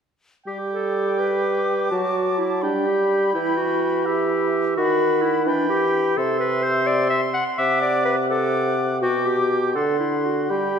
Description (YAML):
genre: quick classical-period movement for symphony orchestra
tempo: 84 BPM (dotted quarters)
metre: 6/8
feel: rubato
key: G major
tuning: A4 = 440 Hz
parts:
  - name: bright silver concert flute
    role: second line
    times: 0.5-10.8 s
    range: B5 to D6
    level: -28 LUFS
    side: left 1 dB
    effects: none
  - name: clear clarinet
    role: second line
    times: 0.5-10.8 s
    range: D4 to F#5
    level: -23 LUFS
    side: left 2 dB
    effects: none
  - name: mellow cor anglais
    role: second line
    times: 0.5-10.8 s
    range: E5 to A5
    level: -29 LUFS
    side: right 1 dB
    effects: none
  - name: dark bassoon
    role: accompaniment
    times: 0.5-10.8 s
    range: B2 to G3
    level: -22 LUFS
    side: right 2 dB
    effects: none
room: moderate scoring stage reverb, RT60 1.9 s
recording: none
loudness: -19 LUFS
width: side -7 dB against mid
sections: 0.5-10.8 A section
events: none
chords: 0.5 G; 1.9 D/F#; 2.6 G; 3.3 Em; 4.8 B/D#; 5.5 Em; 6.2 C; 9.0 G/B; 9.8 D7